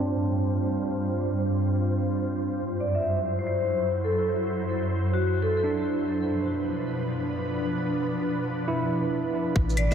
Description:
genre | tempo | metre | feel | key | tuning
future garage | 138 BPM | 4/4 | swing 66% on 16ths | unclear | A4 = 440 Hz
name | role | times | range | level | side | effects
tine electric piano | accompaniment | 0.0-2.6, 5.6-9.7 s | C4 to E4 | -30 LUFS | right 3 dB | medium stereo tremolo, sidechain pumping, diffuse ambient delay
ethereal airy pad | sustained chords | 0.0-9.9 s | F#2 to C5 | -27 LUFS | equal | ensemble chorus, built-in reverb, sidechain pumping
vibraphone with medium hard mallets | melody | 2.8-5.6, 9.8-9.9 s | F#4 to E5 | -29 LUFS | left 1 dB | vintage 12-bit sampler grit, diffuse ambient delay
warm sub bass | bass | 9.6-9.9 s | A1 | -24 LUFS | equal | tube saturation, sidechain pumping
electronic kick drum | drums | 9.6-9.9 s | none | -24 LUFS | equal | none
electronic shaker, hi-hat and claves | drums | 9.7-9.9 s | none | -30 LUFS | left 3 dB | low-pass filter on perc, low-pass filter on hats, low-pass filter on room
room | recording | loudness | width
wet lush hall reverb, RT60 1.7 s | dreamy mix soaked in reverb, low-pass filter | -24 LUFS | side -8 dB against mid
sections
0.0-9.6 A section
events
filter sweep 0.0-9.6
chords
0.0 G7sus4; 2.6 D7/F#; 6.1 Bdim

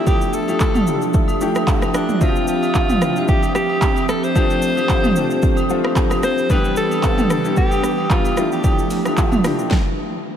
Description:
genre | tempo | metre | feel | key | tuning
amapiano | 112 BPM | 4/4 | swing 55% on 16ths | unclear | A4 = 440 Hz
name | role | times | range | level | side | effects
bright alto saxophone | melody | 0.0-9.0 s | D4 to C5 | -23 LUFS | equal | diffuse ambient delay
clear grand piano | accompaniment | 0.0-9.7 s | E3 to E5 | -22 LUFS | left 4 dB | analog chorus
airy breathy pad | sustained chords | 0.0-9.7 s | E3 to E5 | -23 LUFS | right 2 dB | chorus, sidechain pumping
deep house drum kit | drums | 0.1-9.8 s | handclaps, hi-hat, kick drum, rim click, shaker, snare drum, toms | -19 LUFS | equal | overdrive
agogo bells and woodblock | percussion | 0.1-9.4 s | none | -30 LUFS | right 1 dB | none
room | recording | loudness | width
moderate cathedral reverb, RT60 4.6 s | dreamy mix soaked in reverb | -15 LUFS | side -9 dB against mid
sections
0.0-10.4 A section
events
stop 9.7-10.4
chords
0.0 Fmaj13; 2.2 Dm11; 4.4 G9sus4; 6.5 Em7; 8.4 Fmaj13

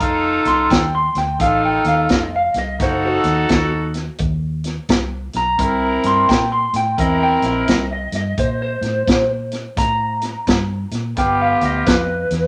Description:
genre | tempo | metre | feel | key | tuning
electric blues shuffle | 86 BPM | 4/4 | swing 64% on 8ths | unclear | A4 = 440 Hz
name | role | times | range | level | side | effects
electric guitar through a small old amp | second line | 0.0-12.5 s | F#4 to C6 | -22 LUFS | equal | spring reverb
warm horn section | stabs | 0.0-12.0 s | B3 to Bb4 | -21 LUFS | equal | none
vintage muted fingered electric bass | bass | 0.0-12.5 s | F1 to Bb2 | -26 LUFS | equal | none
vintage drum kit | drums | 0.0-12.4 s | hi-hat, kick drum, snare drum | -22 LUFS | equal | none
room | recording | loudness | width
wet small room reverb, RT60 0.5 s | none | -18 LUFS | mono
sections
0.0-12.5 A section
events
clean electric guitar solo 0.0-12.5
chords
0.0 F7; 2.8 F#dim7; 5.6 C7; 11.2 G7

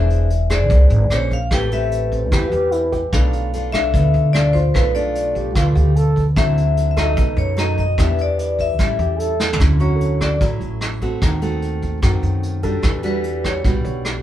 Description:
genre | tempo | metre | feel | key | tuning
bossa nova | 148 BPM | 4/4 | straight | G major, D major from 9.6 s | A4 = 439 Hz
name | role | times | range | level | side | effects
vibraphone with medium hard mallets | melody | 0.0-10.4, 13.1-13.7 s | B4 to G5 | -22 LUFS | left 3 dB | none
nylon-string guitar | accompaniment | 0.0-14.2 s | A2 to B#4 | -24 LUFS | equal | none
upright bass | bass | 0.0-14.2 s | E1 to F#2 | -18 LUFS | equal | none
vintage brush drum kit | drums | 0.1-14.1 s | hi-hat, kick drum, rim click, snare drum, toms | -22 LUFS | equal | none
breathy trombone | second line | 2.1-6.3, 9.0-9.6 s | C4 to A4 | -25 LUFS | right 3 dB | none
warm grand piano | accompaniment | 2.9-14.2 s | F4 to D5 | -31 LUFS | right 3 dB | none
room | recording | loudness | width
moderate studio reverb, RT60 0.5 s | band playing live in one room | -15 LUFS | side -12 dB against mid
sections
0.0-9.6 A section; 9.6-14.2 B section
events
drum fill 9.4; vibraphone solo 9.6-14.2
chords
0.0 Eaug7; 1.1 Bbm9; 1.5 Am9; 3.1 G9/B (rootless); 6.4 D9; 7.2 B7; 8.0 Em7; 8.8 A7; 9.6 Dmaj9; 11.2 D#dim7; 12.8 Em9

